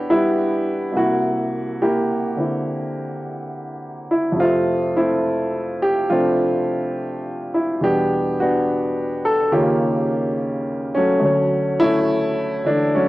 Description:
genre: solo jazz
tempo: 70 BPM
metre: 4/4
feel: swing 67% on 8ths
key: unclear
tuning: A4 = 440 Hz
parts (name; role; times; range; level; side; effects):
- warm upright piano; solo; 0.0-13.1 s; C2 to E5; -18 LUFS; equal; cassette tape
room: light reverb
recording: home recording on cassette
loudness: -18 LUFS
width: side -17 dB against mid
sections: 0.0-13.1 A section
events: none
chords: 0.0 Em7; 0.9 C7; 4.4 Fmaj7; 7.8 Em7; 9.5 Eb9; 11.2 Dmaj7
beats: 0.08 | 0.94 1.80 2.65 3.51 | 4.37 5.22 6.08 6.94 | 7.79 8.65 9.51 10.36 | 11.22 12.07 12.93

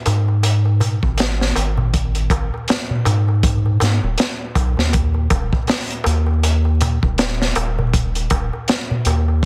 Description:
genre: trip hop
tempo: 80 BPM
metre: 4/4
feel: swing 58% on 16ths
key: G# minor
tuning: A4 = 440 Hz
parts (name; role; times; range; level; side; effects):
- round analog bass; bass; 0.1-9.5 s; D#1 to G#2; -20 LUFS; equal; none
- crunchy breakbeat drum kit; drums; 0.1-9.5 s; hi-hat, kick drum, snare drum; -22 LUFS; equal; none
- darbuka; percussion; 0.1-9.4 s; none; -27 LUFS; equal; none
room: little or no reverb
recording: dense, heavily limited modern master, vinyl crackle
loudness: -18 LUFS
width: mono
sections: 0.0-9.5 A section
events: none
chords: none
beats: 0.43 1.18 | 1.93 2.68 3.43 4.18 | 4.93 5.68 6.43 7.18 | 7.93 8.68 9.43

